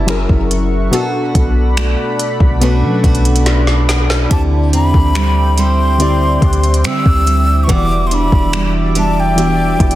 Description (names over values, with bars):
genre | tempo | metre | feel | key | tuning
contemporary R&B | 71 BPM | 4/4 | straight | unclear | A4 = 440 Hz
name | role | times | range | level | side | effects
warm analog keys | accompaniment | 0.0-10.0 s | B2 to E5 | -19 LUFS | left 2 dB | chorus
lush unison pad | sustained chords | 0.0-10.0 s | G3 to D6 | -24 LUFS | equal | chorus, sidechain pumping
picked steel-string acoustic guitar | arpeggios | 0.0-10.0 s | F#2 to F#4 | -21 LUFS | right 4 dB | none
clean 808-style bass | bass | 0.0-10.0 s | E1 to F#3 | -14 LUFS | equal | none
smooth R&B drum kit | drums | 0.1-10.0 s | finger snaps, hi-hat, kick drum, snare drum | -16 LUFS | equal | soft clipping on snare
breathy mellow silver concert flute | melody | 4.3-10.0 s | G5 to E6 | -18 LUFS | left 1 dB | tape echo
synth chime | texture | 4.3-8.1 s | G4 to A5 | -32 LUFS | left 3 dB | none
room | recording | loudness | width
light reverb, digital ambience | dense, heavily limited modern master | -11 LUFS | side -14 dB against mid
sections
0.0-4.3 A section; 4.3-10.0 B section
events
drum fill 3.5-4.3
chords
0.1 F#7; 0.9 Bm7; 4.3 D9sus4; 7.7 Em9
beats
0.08 | 0.93 1.77 2.62 3.46 | 4.31 5.15 6.00 6.84 | 7.69 8.53 9.38